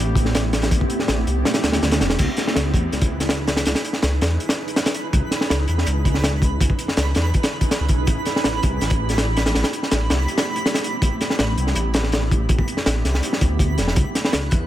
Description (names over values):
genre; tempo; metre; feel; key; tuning
drum and bass, jungle; 163 BPM; 4/4; straight; C# minor; A4 = 440 Hz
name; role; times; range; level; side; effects
dark detuned saw bass; bass; 0.0-14.7 s; E1 to E2; -22 LUFS; equal; tube saturation
crunchy breakbeat drum kit; drums; 0.2-14.6 s; crash cymbal, hi-hat, kick drum, snare drum; -20 LUFS; equal; none
twinkling granular texture; texture; 2.9-14.7 s; B5 to F#6; -31 LUFS; right 3 dB; built-in reverb
room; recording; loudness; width
studio reverb; none; -18 LUFS; side -13 dB against mid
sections
0.0-2.2 A section; 2.2-14.7 A section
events
drop 0.0-2.2, 2.2-14.7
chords
0.0 Am9; 2.2 C#m9; 8.1 Am9; 14.0 C#m9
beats
0.35 | 0.72 1.08 1.45 1.82 | 2.19 2.56 2.92 3.29 | 3.66 4.03 4.40 4.76 | 5.13 5.50 5.87 6.24 | 6.61 6.97 7.34 7.71 | 8.08 8.45 8.81 9.18 | 9.55 9.92 10.29 10.65 | 11.02 11.39 11.76 12.13 | 12.49 12.86 13.23 13.60 | 13.97 14.34